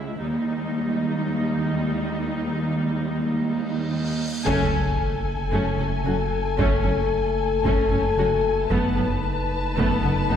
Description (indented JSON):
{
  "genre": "cinematic, hybrid orchestral and electronic film score",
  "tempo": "113 BPM",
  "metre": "4/4",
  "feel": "straight",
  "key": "unclear",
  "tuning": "A4 = 441 Hz",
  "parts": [
    { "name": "rich symphonic viola section", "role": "accompaniment", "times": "0.0-10.4 s", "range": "G3 to F#4", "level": "-28 LUFS", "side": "right 1 dB", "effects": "none" },
    { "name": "rich symphonic cello section", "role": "bass", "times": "0.0-10.4 s", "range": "C#2 to F#2", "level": "-27 LUFS", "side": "right 2 dB", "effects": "none" },
    { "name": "cymbal swell and sub drop", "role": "sound effects", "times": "3.7-6.6 s", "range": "none", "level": "-33 LUFS", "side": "equal", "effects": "none" },
    { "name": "mellow French horn section", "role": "sustained chords", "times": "4.4-10.4 s", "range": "A3 to A4", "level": "-26 LUFS", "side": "left 6 dB", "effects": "none" },
    { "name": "dark symphonic violin section", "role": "second line", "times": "4.5-10.4 s", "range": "A4 to A5", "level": "-28 LUFS", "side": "left 4 dB", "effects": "none" },
    { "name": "saturated sub bass", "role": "bass", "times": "4.5-10.4 s", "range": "F#1", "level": "-28 LUFS", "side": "equal", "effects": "none" },
    { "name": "warm studio double bass section", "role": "bass", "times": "4.5-10.4 s", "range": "F#1", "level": "-29 LUFS", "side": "right 2 dB", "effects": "none" },
    { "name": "taiko ensemble", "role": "drums", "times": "4.5-10.3 s", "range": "none", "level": "-29 LUFS", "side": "equal", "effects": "none" }
  ],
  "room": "wet scoring stage reverb, RT60 1.9 s",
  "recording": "heard from further back in the room",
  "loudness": "-21 LUFS",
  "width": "side -8 dB against mid",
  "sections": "0.0-4.5 A section; 4.5-10.4 B section",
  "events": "cymbal swell 3.7-4.5; band accent 4.5-5.0; impact 4.5-6.6",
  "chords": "0.2 D#; 4.5 F#madd9; 8.7 B7/F#"
}